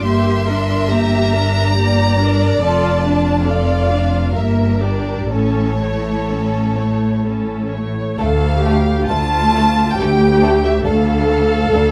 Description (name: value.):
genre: classical, slow romantic movement for string orchestra.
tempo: 60-71 BPM.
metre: 3/4.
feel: rubato.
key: D minor.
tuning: A4 = 440 Hz.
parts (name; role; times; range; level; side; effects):
rich chamber violin section; melody; 0.0-11.9 s; C#5 to C6; -24 LUFS; equal; none.
rich chamber violin section; second line; 0.0-11.8 s; A3 to E5; -26 LUFS; equal; none.
rich chamber viola section; accompaniment; 0.0-11.9 s; A3 to C#5; -21 LUFS; equal; none.
rich chamber double bass section; bass; 0.0-11.9 s; F1 to D2; -22 LUFS; equal; none.
rich studio cello section; bass; 0.0-11.9 s; D2 to A2; -22 LUFS; equal; none.
room: moderate studio reverb, RT60 0.8 s.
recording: dark, warm production.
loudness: -16 LUFS.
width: mono.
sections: 0.0-8.2 A section; 8.2-11.9 A section.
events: none.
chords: 0.0 Gm; 2.6 Dm/F; 4.3 Gm; 5.3 A; 8.2 Dm.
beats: | 0.03 0.90 1.76 | 2.61 3.46 4.34 | 5.30 6.29 7.25 | 8.20 9.11 9.99 | 10.86 11.72.